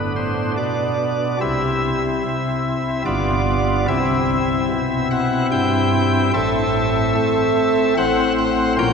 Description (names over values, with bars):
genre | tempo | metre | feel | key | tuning
classical, chorale-style piece for pipe organ | 73 BPM | 3/4 | straight | unclear | A4 = 441 Hz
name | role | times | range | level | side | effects
chamber organ, cornet | solo | 0.0-8.9 s | G1 to G5 | -17 LUFS | equal | none
room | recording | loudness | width
wet church reverb, RT60 3.5 s | recorded in a church or concert hall | -17 LUFS | side -6 dB against mid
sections
0.0-8.9 A section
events
none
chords
0.0 G; 1.4 C; 3.1 G7; 3.9 C; 6.3 Am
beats
0.57 | 1.41 2.24 3.06 | 3.88 4.70 5.52 | 6.34 7.16 7.98 | 8.79